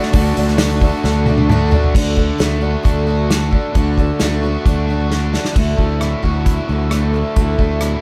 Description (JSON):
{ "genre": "folk rock and heartland rock", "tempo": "133 BPM", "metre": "4/4", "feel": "straight", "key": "D major", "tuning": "A4 = 440 Hz", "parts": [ { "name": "lightly driven lead guitar", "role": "melody", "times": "0.0-1.5 s", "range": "D5", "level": "-35 LUFS", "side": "equal", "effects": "none" }, { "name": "picked twelve-string acoustic guitar", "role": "accompaniment", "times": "0.0-8.0 s", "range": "D3 to F#4", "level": "-24 LUFS", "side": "equal", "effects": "none" }, { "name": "dark symphonic string section", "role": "sustained chords", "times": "0.0-1.9, 5.5-8.0 s", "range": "A3 to A4", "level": "-34 LUFS", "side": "equal", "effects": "none" }, { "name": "crunchy overdriven guitar", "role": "riff", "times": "0.0-8.0 s", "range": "D3 to F#4", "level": "-25 LUFS", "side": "equal", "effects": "none" }, { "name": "unplugged drum kit", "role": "drums", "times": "0.0-7.9 s", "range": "crash cymbal, hi-hat, kick drum, rim click, snare drum, toms", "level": "-20 LUFS", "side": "equal", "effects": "none" }, { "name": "fingered electric bass", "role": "bass", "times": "0.1-7.9 s", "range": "D2", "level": "-20 LUFS", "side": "equal", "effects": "none" } ], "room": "little or no reverb", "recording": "dark, warm production", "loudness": "-16 LUFS", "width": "mono", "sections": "0.0-1.9 A section; 1.9-5.6 B section; 5.6-8.0 C section", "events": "drum fill 1.0-1.9, 5.1-5.6", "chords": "0.0 D; 5.6 Dadd9" }